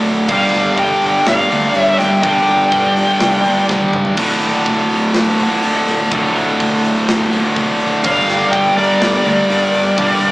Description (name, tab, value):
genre	heavy metal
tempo	124 BPM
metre	4/4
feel	straight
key	unclear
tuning	A4 = 440 Hz
part	rich studio string section	sustained chords	0.0-10.3 s	F3 to D5	-28 LUFS	equal	none
part	heavy high-gain guitar	riff	0.0-10.3 s	D2 to G3	-20 LUFS	left 2 dB	distortion
part	heavy high-gain guitar	riff	0.0-10.3 s	D2 to G3	-16 LUFS	right 1 dB	distortion
part	tight metal drum kit	drums	0.0-10.3 s	crash cymbal, hi-hat, kick drum, snare drum, toms	-23 LUFS	equal	none
part	fuzz picked electric bass	bass	0.1-10.3 s	D1 to D2	-25 LUFS	equal	overdrive
part	high-gain lead guitar	melody	0.3-3.6, 8.1-10.3 s	D5 to G5	-15 LUFS	equal	distortion
part	bluesy overdriven lead guitar	second line	0.3-3.7, 8.0-10.3 s	Bb4 to E5	-23 LUFS	equal	distortion
room	moderate studio ambience, RT60 0.5 s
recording	rough rehearsal-room recording, small speaker sound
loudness	-12 LUFS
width	side -21 dB against mid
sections	0.0-10.3 A section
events	half time 0.0-10.3; drum fill 3.7-4.2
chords	0.3 Gm; 4.2 Dm; 8.1 Gm